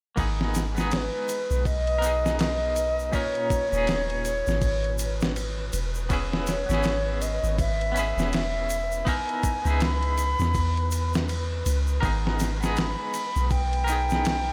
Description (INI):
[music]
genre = trip hop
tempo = 81 BPM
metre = 4/4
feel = swing 60% on 16ths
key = G# minor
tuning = A4 = 443 Hz
[part]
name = clean electric guitar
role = accompaniment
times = 0.2-14.5 s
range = A#2 to A#4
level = -34 LUFS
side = equal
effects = tremolo, tape echo
[part]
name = soft 808-style bass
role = bass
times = 0.2-14.5 s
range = D#1 to E2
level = -30 LUFS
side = equal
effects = none
[part]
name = dusty soul sampler-style drum kit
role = drums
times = 0.2-14.5 s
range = kick drum, ride cymbal, snare drum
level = -32 LUFS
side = equal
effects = studio reverb
[part]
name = tube shaker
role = percussion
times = 0.2-14.4 s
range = none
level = -42 LUFS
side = equal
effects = none
[part]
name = wind-like tuned noise texture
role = texture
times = 0.7-14.5 s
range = B4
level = -43 LUFS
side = equal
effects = built-in reverb
[part]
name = wooden flute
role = melody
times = 0.9-14.5 s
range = B4 to B5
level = -30 LUFS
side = equal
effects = tape echo
[sound]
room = light reverb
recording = none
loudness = -26 LUFS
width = mono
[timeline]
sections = 0.2-14.5 A section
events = none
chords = 0.2 G#madd9; 3.1 D#7sus4; 6.1 E6; 9.1 C#m7; 12.0 G#madd9